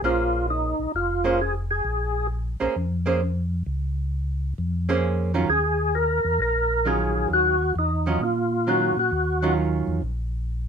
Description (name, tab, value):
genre	jazz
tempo	132 BPM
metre	4/4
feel	swing 66% on 8ths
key	Bb minor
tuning	A4 = 440 Hz
part	percussive tonewheel organ	melody	0.0-2.3, 5.5-9.5 s	Eb4 to Bb4	-22 LUFS	left 1 dB	slow rotary speaker, overdrive, chorus vibrato
part	archtop guitar, miked and amplified	accompaniment	0.0-10.0 s	Eb3 to C5	-25 LUFS	right 4 dB	none
part	mellow tonewheel organ	bass	0.0-10.7 s	F1 to Bb2	-26 LUFS	equal	chorus vibrato, slow rotary speaker
room	light reverb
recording	minimal, uncompressed stereo recording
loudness	-21 LUFS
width	side -7 dB against mid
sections	0.0-10.7 A section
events	none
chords	0.0 Bbm9; 5.5 Ebm9